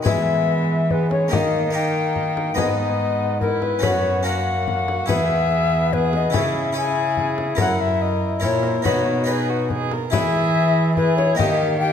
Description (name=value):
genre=classical, renaissance-style consort dance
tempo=143 BPM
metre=3/4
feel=straight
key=unclear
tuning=A4 = 438 Hz
part: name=clear bassoon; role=accompaniment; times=0.0-11.9 s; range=G#3 to E4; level=-27 LUFS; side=left 3 dB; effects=none
part: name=harpsichord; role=accompaniment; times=0.0-11.9 s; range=E2 to D#5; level=-27 LUFS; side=left 2 dB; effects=none
part: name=mellow tenor recorder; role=melody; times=0.1-11.9 s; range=A#4 to G#5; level=-22 LUFS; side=left 5 dB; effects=none
part: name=warm violin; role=second line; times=0.1-11.9 s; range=B3 to A#4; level=-28 LUFS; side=right 7 dB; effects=none
part: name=rich cello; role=bass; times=0.1-11.9 s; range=E2 to E3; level=-24 LUFS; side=right 1 dB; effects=none
part: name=frame drum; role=percussion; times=0.1-11.6 s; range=none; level=-27 LUFS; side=left 4 dB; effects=none
room=wet recital hall reverb, RT60 1.7 s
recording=none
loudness=-18 LUFS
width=side -8 dB against mid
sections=0.1-10.1 A section; 10.1-11.9 A section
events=none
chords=0.1 E; 1.3 D#; 2.6 G#m; 3.8 F#sus4; 4.2 F#; 5.1 E; 6.3 C#m; 7.6 F#7; 8.9 B; 10.1 E; 11.4 D#